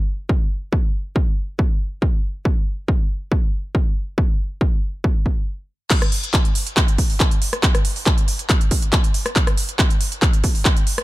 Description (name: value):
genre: techno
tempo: 139 BPM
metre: 4/4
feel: straight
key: none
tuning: none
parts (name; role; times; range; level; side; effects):
- electronic kick drum; drums; 0.3-10.7 s; none; -18 LUFS; equal; none
- techno drum kit; drums; 5.9-11.0 s; crash cymbal, handclaps, hi-hat, rim click; -21 LUFS; equal; none
room: little or no reverb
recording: none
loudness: -17 LUFS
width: side -18 dB against mid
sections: 0.0-5.9 A section; 5.9-11.0 B section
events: stop 5.5-5.9; drop 5.9-11.0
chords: none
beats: 0.29 | 0.72 1.16 1.59 2.02 | 2.45 2.88 3.31 3.75 | 4.18 4.61 5.04 5.47 | 5.91 6.34 6.77 7.20 | 7.63 8.06 8.49 8.93 | 9.36 9.79 10.22 10.65